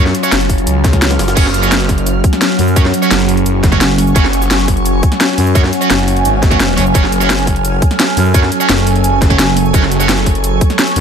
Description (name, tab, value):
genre	dark technical drum and bass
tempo	172 BPM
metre	4/4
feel	straight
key	F# harmonic minor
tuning	A4 = 440 Hz
part	metallic inharmonic drone	sustained chords	0.0-11.0 s	F#3 to A4	-19 LUFS	right 1 dB	chorus, built-in reverb, sidechain pumping
part	distorted electric guitar	stabs	0.0-10.1 s	C#4 to C#5	-20 LUFS	right 4 dB	overdrive, tape echo
part	growling FM bass	bass	0.0-0.1, 2.6-11.0 s	F#1 to F#2	-14 LUFS	equal	none
part	ethereal airy pad	texture	0.0-11.0 s	F#3 to E#6	-17 LUFS	right 2 dB	ensemble chorus, built-in reverb, phaser, sidechain pumping
part	drum and bass drum kit	drums	0.1-11.0 s	cabasa, crash cymbal, hi-hat, snare drum	-16 LUFS	left 1 dB	overdrive
part	jungle sampler-style drum kit	drums	0.1-11.0 s	hi-hat, snare drum	-27 LUFS	left 1 dB	none
part	phased detuned saw bass	bass	0.3-10.6 s	F#1 to C#2	-15 LUFS	equal	phaser, sidechain pumping
part	electronic kick drum	drums	0.5-10.7 s	none	-12 LUFS	equal	overdrive
room	digital ambience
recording	none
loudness	-9 LUFS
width	side -7 dB against mid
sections	0.0-11.0 A section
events	none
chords	0.0 F#5